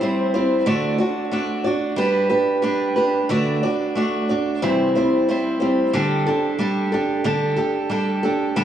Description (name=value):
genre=rock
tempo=91 BPM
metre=4/4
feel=straight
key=D mixolydian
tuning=A4 = 441 Hz
part: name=picked steel-string acoustic guitar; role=solo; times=0.0-8.6 s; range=C3 to D5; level=-18 LUFS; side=right 1 dB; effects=dub echo
room=moderate spring reverb, RT60 2.5 s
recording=echo-heavy mix, vinyl crackle, small room reverb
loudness=-18 LUFS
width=side -10 dB against mid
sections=0.0-5.9 A section; 5.9-8.6 B section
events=none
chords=0.0 C; 0.7 D; 2.0 G; 3.3 D; 4.6 C; 5.9 Dsus4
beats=0.00 | 0.66 1.32 1.98 2.64 | 3.29 3.95 4.61 5.27 | 5.93 6.59 7.25 7.91 | 8.57